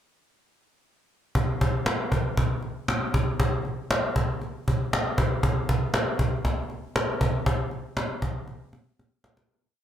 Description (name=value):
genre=soul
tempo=118 BPM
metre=4/4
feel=straight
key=none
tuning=none
part: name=cajon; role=drums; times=1.4-9.5 s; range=none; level=-24 LUFS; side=equal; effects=none
room=wet small room ambience, RT60 0.5 s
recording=none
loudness=-24 LUFS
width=side -10 dB against mid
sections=0.0-1.3 pickup bar; 1.3-9.5 verse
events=drum fill 0.3-1.3, 8.5-9.5; fade-out 7.5-9.5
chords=none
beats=0.32 0.84 | 1.35 1.86 2.37 2.88 | 3.39 3.90 4.41 4.92 | 5.43 5.94 6.45 6.95 | 7.46 7.97 8.48 8.98